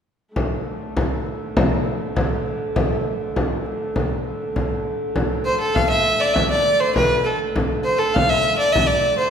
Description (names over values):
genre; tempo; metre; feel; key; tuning
medieval dance; 100 BPM; 2/4; straight; unclear; A4 = 437 Hz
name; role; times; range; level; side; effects
dark hurdy-gurdy; drone; 0.4-9.3 s; D3 to A3; -27 LUFS; right 1 dB; none
frame drum; percussion; 0.4-9.0 s; none; -22 LUFS; left 1 dB; none
rich fiddle; melody; 5.5-9.3 s; A4 to F5; -17 LUFS; equal; none
room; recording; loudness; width
wet recital hall reverb, RT60 1.7 s; recorded in a church or concert hall; -18 LUFS; side -7 dB against mid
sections
0.4-5.2 A section; 5.2-9.3 B section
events
none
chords
none